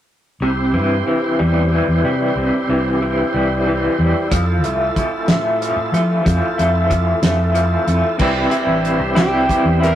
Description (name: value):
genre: psychedelic rock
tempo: 62 BPM (dotted quarters)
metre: 6/8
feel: straight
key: C major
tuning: A4 = 440 Hz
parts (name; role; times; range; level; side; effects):
- overdriven tonewheel organ; sustained chords; 0.4-10.0 s; E4 to E5; -24 LUFS; right 1 dB; slow rotary speaker, chorus vibrato
- electric guitar through a small old amp; riff; 0.4-10.0 s; C3 to E4; -18 LUFS; equal; tremolo
- fingered electric bass; bass; 0.4-9.9 s; A1 to F3; -19 LUFS; equal; none
- damped 70s drum kit; drums; 4.3-10.0 s; crash cymbal, hi-hat, kick drum, snare drum; -19 LUFS; equal; none
- overdriven synth lead; melody; 9.2-10.0 s; G4 to Bb4; -18 LUFS; right 2 dB; distortion
room: wet studio reverb, RT60 0.7 s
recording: rough rehearsal-room recording, warm saturation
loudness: -14 LUFS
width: side -11 dB against mid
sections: 0.4-8.2 A section; 8.2-10.0 B section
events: none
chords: 0.4 C; 4.3 Fmaj7; 8.2 C